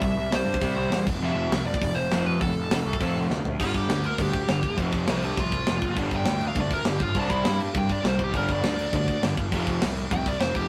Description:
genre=punk rock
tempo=202 BPM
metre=4/4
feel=straight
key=unclear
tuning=A4 = 439 Hz
part: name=nasal lead guitar with a parked wah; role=melody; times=0.0-10.7 s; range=D4 to G5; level=-32 LUFS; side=equal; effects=overdrive
part: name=crunchy overdriven guitar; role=riff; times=0.0-10.5 s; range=F2 to C4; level=-35 LUFS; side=equal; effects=none
part: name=overdriven semi-hollow guitar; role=riff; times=0.0-10.5 s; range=F2 to C4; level=-33 LUFS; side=equal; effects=none
part: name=fuzz picked electric bass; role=bass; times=0.0-10.7 s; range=E1 to C3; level=-32 LUFS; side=equal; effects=overdrive
part: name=tight metal drum kit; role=drums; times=0.0-10.6 s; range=crash cymbal, hi-hat, kick drum, snare drum, toms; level=-31 LUFS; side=equal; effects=none
room=light reverb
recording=rough rehearsal-room recording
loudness=-25 LUFS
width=mono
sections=0.0-3.6 A section; 3.6-10.7 B section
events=drum fill 3.3; lead electric guitar solo 3.6-10.7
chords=0.0 C; 1.1 F; 3.6 G5; 4.8 F5; 6.0 G5; 7.2 C; 8.3 G5; 9.5 F5

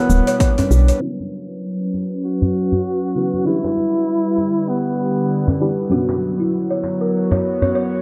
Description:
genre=organic downtempo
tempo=98 BPM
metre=4/4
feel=swing 58% on 16ths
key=unclear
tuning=A4 = 440 Hz
part: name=mellow duduk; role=melody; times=0.0-5.6 s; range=B3 to F#4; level=-24 LUFS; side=equal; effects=tape echo
part: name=airy breathy pad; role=sustained chords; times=0.0-8.0 s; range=B2 to C#5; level=-24 LUFS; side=equal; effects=chorus, sidechain pumping
part: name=kalimba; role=arpeggios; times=0.0-1.0, 5.9-7.9 s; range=E4 to C#5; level=-26 LUFS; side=equal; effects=delay
part: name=woody FM bass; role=bass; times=0.1-0.9 s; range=D1 to B1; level=-15 LUFS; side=equal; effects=sidechain pumping
part: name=electronic cabasa and hi-hat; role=drums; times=0.1-1.0 s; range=none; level=-33 LUFS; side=equal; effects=overdrive
part: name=electronic kick drum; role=drums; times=0.4-0.5 s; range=none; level=-19 LUFS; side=equal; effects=overdrive
part: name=djembe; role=percussion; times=0.6-7.7 s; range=none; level=-24 LUFS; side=equal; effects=none
part: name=deep mellow chord stab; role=accompaniment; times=1.0-8.0 s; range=F#3 to B4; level=-25 LUFS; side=equal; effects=chorus, phaser, sidechain pumping, delay
room=moderate scoring stage reverb, RT60 1.8 s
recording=low-pass filter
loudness=-19 LUFS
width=mono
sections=0.0-1.0 A section; 1.0-8.0 B section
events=filter sweep on analog synth pad 1.0-8.0; filter sweep 1.0-8.0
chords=0.0 G; 1.0 F#7sus4; 3.5 G6; 5.9 Bmadd9

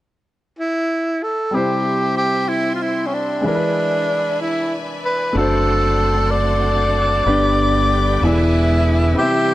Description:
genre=gospel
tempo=63 BPM (dotted quarters)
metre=6/8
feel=straight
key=C major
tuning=A4 = 440 Hz
part: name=breathy tenor saxophone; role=melody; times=0.6-9.5 s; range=Db4 to D5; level=-19 LUFS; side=equal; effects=none
part: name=clear concert grand piano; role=accompaniment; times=1.5-9.5 s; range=G2 to E5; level=-21 LUFS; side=left 1 dB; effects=none
part: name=bright studio string section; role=sustained chords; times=1.5-9.5 s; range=C5 to E6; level=-30 LUFS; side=left 3 dB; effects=none
part: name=bright tonewheel organ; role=sustained chords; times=5.3-9.5 s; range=D3 to G4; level=-25 LUFS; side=right 3 dB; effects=slow rotary speaker, overdrive, chorus vibrato
part: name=deep dub fingered electric bass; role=bass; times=5.4-9.1 s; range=E1 to G1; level=-19 LUFS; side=equal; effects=none
room=light reverb, small room ambience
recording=none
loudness=-16 LUFS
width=side -15 dB against mid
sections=0.0-1.5 A section; 1.5-9.2 B section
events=none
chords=0.0 N.C.; 1.5 C; 3.4 E7; 5.4 D7/F#; 7.3 G; 8.2 E7

